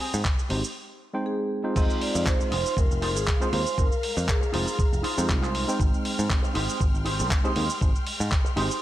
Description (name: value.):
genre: nu-disco, nu disco.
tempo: 119 BPM.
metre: 4/4.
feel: swing 54% on 16ths.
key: F minor.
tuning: A4 = 439 Hz.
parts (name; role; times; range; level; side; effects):
warm studio string section; sustained chords; 0.0-8.8 s; Ab3 to F6; -37 LUFS; left 2 dB; sidechain pumping.
electric guitar with an envelope filter; riff; 0.0-8.8 s; C4 to C5; -32 LUFS; right 2 dB; lush chorus, slapback echo.
dusty soul sampler-style drum kit; drums; 0.0-8.8 s; crash cymbal, handclaps, hi-hat, shaker; -31 LUFS; right 1 dB; none.
picked electric bass; bass; 0.1-8.7 s; F1 to Ab2; -28 LUFS; equal; sidechain pumping.
electronic kick drum; drums; 0.2-8.4 s; none; -24 LUFS; equal; none.
tine electric piano; accompaniment; 0.5-8.7 s; Ab3 to G5; -30 LUFS; right 1 dB; slapback echo.
vibraphone with medium hard mallets; melody; 1.3-5.3 s; Ab4 to Eb5; -31 LUFS; equal; vintage 12-bit sampler grit, tape echo.
room: little or no reverb.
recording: none.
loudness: -23 LUFS.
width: side -14 dB against mid.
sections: 0.0-1.8 A section; 1.8-8.8 B section.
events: break 0.8-1.8; drop 1.8-8.8.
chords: 0.0 Abmaj7; 1.8 Fm7; 5.8 Abmaj7.